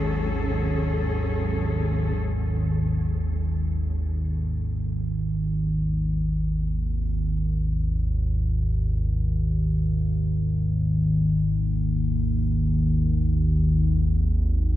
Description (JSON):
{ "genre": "dark ambient drone", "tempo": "free time", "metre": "none", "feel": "none", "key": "unclear", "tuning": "A4 = 441 Hz", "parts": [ { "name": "rich chamber cello section", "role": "sustained chords", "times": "0.0-2.2 s", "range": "G#2 to A4", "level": "-31 LUFS", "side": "left 1 dB", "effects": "none" }, { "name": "analog drone", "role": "drone", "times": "0.0-14.8 s", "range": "G#1 to D#2", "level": "-22 LUFS", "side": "equal", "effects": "chorus" } ], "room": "moderate huge ambient reverb, RT60 8.3 s", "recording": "dark, warm production", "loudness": "-22 LUFS", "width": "side -14 dB against mid", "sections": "0.0-2.2 A section; 2.2-14.8 B section", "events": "none", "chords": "0.0 F#m/G#; 2.2 G#5", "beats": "free time" }